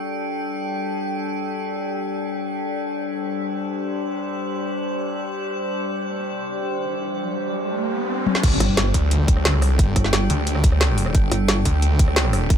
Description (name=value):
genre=dark technical drum and bass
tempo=177 BPM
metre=4/4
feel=straight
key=unclear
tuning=A4 = 436 Hz
part: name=metallic inharmonic drone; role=sustained chords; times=0.0-12.6 s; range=G3 to G5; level=-25 LUFS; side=left 1 dB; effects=chorus, built-in reverb, sidechain pumping
part: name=riser and impact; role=sound effects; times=6.7-9.8 s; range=none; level=-28 LUFS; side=right 1 dB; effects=none
part: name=drum and bass drum kit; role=drums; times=8.3-12.6 s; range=crash cymbal, hi-hat, rim click, snare drum, toms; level=-22 LUFS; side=left 1 dB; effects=low-pass filter on hats, low-pass filter on snare, low-pass filter on cymbals, low-pass filter on toms, low-pass filter on room
part: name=snarling distorted saw bass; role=bass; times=8.4-12.6 s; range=G1 to D2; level=-20 LUFS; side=equal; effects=distortion, overdrive, sidechain pumping
part: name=electronic kick drum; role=drums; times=8.4-12.6 s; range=none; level=-18 LUFS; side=equal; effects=none
part: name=pulsing pluck wobble bass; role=bass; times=8.6-11.6 s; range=G1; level=-20 LUFS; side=equal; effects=chorus
room=light reverb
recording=none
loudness=-20 LUFS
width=side -8 dB against mid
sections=0.0-8.4 A section; 8.4-12.6 B section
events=riser 6.7-8.4; drum fill 8.3; drop 8.4-12.6; impact 8.4-9.8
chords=0.0 G5